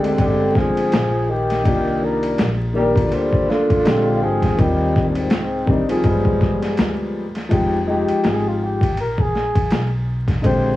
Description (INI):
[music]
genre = hip hop, jazz-hop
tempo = 82 BPM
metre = 4/4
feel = swing 57% on 16ths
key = unclear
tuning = A4 = 440 Hz
[part]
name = breathy flugelhorn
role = melody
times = 0.0-10.8 s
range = C4 to C5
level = -23 LUFS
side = left 1 dB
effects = cassette tape, tape echo, plate reverb
[part]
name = breathy tenor saxophone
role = second line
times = 0.0-7.1 s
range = Ab2 to G3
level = -23 LUFS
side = right 1 dB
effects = cassette tape, tape echo, plate reverb
[part]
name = warm grand piano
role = accompaniment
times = 0.0-10.7 s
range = D3 to G5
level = -21 LUFS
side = left 2 dB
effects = cassette tape, plate reverb
[part]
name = upright bass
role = bass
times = 0.0-10.8 s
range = F1 to Eb2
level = -25 LUFS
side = equal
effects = none
[part]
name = boom bap sampler-style drum kit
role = drums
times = 0.0-10.6 s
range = hi-hat, kick drum, ride cymbal, snare drum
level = -20 LUFS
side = equal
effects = overdrive, cassette tape
[sound]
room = moderate booth ambience, RT60 0.2 s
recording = home recording on cassette, vinyl crackle, small room ambience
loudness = -16 LUFS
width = side -16 dB against mid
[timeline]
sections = 0.0-7.5 A section; 7.5-10.8 B section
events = flugelhorn solo 7.5-10.8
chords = 0.0 Bb13; 1.7 Cm11; 3.9 Bb13; 4.6 Eb69; 6.1 G7b9; 7.5 Fm9